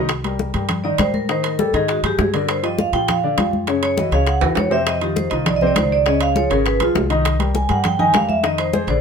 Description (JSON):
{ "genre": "Afro-Cuban jazz", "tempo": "201 BPM", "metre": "4/4", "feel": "straight", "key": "C minor", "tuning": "A4 = 440 Hz", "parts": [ { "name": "warm baby grand piano", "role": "accompaniment", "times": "0.0-9.0 s", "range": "C3 to Eb5", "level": "-22 LUFS", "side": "left 4 dB", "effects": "none" }, { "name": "upright bass", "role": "bass", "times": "0.0-9.0 s", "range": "Ab1 to Bb2", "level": "-24 LUFS", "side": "equal", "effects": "none" }, { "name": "bongos", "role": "percussion", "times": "0.1-9.0 s", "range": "none", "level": "-27 LUFS", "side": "left 8 dB", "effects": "none" }, { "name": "congas", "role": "percussion", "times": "0.1-8.9 s", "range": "none", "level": "-24 LUFS", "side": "left 2 dB", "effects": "none" }, { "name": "timbales", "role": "percussion", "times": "0.1-9.0 s", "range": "none", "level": "-25 LUFS", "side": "right 7 dB", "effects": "none" }, { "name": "vibraphone with medium hard mallets", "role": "melody", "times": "0.8-9.0 s", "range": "F4 to Ab5", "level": "-20 LUFS", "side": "right 3 dB", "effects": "none" } ], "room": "moderate studio reverb, RT60 0.8 s", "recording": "minimal, uncompressed stereo recording", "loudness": "-16 LUFS", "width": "side -6 dB against mid", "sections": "0.1-9.0 A section", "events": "vibraphone solo 0.1-9.0; drum fill 4.4-4.9", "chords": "0.1 Cm7; 1.3 Am7b5; 1.9 Ab5; 2.5 Gm7; 3.7 F#5; 4.9 F5; 6.1 Dbadd9; 7.2 Cm7; 8.4 Fm7", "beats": "| 0.10 0.40 0.69 0.99 | 1.29 1.59 1.89 2.19 | 2.48 2.78 3.08 3.38 | 3.68 3.97 4.27 4.57 | 4.87 5.17 5.46 5.76 | 6.06 6.36 6.65 6.95 | 7.25 7.55 7.84 8.14 | 8.44 8.73" }